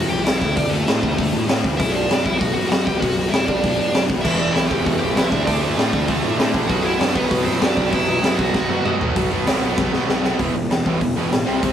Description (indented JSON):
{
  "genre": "punk rock",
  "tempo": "196 BPM",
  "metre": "4/4",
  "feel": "straight",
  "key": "unclear",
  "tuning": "A4 = 442 Hz",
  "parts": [
    { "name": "dark smooth lead guitar", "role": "melody", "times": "0.0-9.0 s", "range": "A3 to G5", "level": "-24 LUFS", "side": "right 1 dB", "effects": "overdrive, digital delay" },
    { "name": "sludgy distorted guitar", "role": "riff", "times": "0.0-11.7 s", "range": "E2 to D4", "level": "-25 LUFS", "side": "left 4 dB", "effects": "overdrive" },
    { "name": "fuzz picked electric bass", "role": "bass", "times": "0.0-11.7 s", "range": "E1 to A2", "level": "-26 LUFS", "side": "equal", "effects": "overdrive" },
    { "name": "raw garage drum kit", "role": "drums", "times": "0.3-11.7 s", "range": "crash cymbal, hi-hat, kick drum, snare drum, toms", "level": "-20 LUFS", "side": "equal", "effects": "none" },
    { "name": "cranked stack guitar", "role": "riff", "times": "4.2-11.7 s", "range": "E2 to D4", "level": "-23 LUFS", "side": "right 6 dB", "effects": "overdrive" }
  ],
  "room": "light reverb",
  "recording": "rough rehearsal-room recording",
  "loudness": "-17 LUFS",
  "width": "side -9 dB against mid",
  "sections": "0.0-9.2 A section; 9.2-10.4 B section; 10.4-11.7 C section",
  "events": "drum fill 8.5-9.2, 9.8-10.4",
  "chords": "0.4 D5; 1.8 Bm; 4.2 Em; 5.3 D5; 6.7 Bm; 10.4 E5"
}